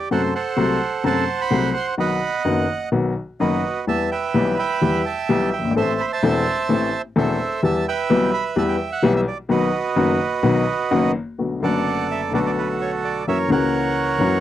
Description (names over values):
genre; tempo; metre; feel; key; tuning
tango; 128 BPM; 4/4; rubato; E minor, B minor from 11.4 s; A4 = 440 Hz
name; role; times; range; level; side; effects
bandoneon; melody; 0.0-14.4 s; F#4 to C6; -22 LUFS; right 5 dB; none
warm upright piano; accompaniment; 0.1-14.4 s; E1 to A4; -19 LUFS; left 3 dB; none
room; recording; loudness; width
light reverb; dry, close 1970s-style studio recording; -18 LUFS; side -12 dB against mid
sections
0.0-11.4 A section; 11.4-14.4 B section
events
none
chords
0.1 F#dim; 2.0 B; 3.9 Em; 5.8 Am; 7.6 Em; 9.5 B; 11.4 Bm7; 13.3 F#7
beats
| 0.12 0.58 1.04 1.51 | 1.98 2.45 2.92 3.40 | 3.88 4.35 4.82 5.29 | 5.77 6.24 6.70 7.17 | 7.63 8.10 8.56 9.03 | 9.49 9.96 10.43 10.91 | 11.39 11.86 12.33 12.80 | 13.27 13.73 14.20